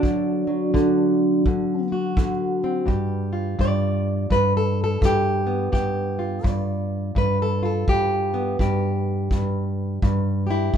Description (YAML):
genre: acoustic country blues, solo or duo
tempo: 84 BPM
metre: 4/4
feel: swing 63% on 8ths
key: unclear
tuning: A4 = 440 Hz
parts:
  - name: fingerpicked plugged-in old ladder-braced acoustic guitar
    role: melody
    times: 0.0-10.8 s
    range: G2 to D5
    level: -20 LUFS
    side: equal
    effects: none
  - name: kick drum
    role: drums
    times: 0.0-10.8 s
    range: none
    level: -24 LUFS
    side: equal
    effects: none
room: light reverb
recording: minimal, uncompressed stereo recording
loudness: -20 LUFS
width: side -8 dB against mid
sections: 0.0-10.8 A section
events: none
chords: 0.0 D; 2.9 G7(no3)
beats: | 0.03 0.74 1.45 2.17 | 2.88 3.59 4.31 5.02 | 5.74 6.45 7.17 7.88 | 8.60 9.31 10.03 10.74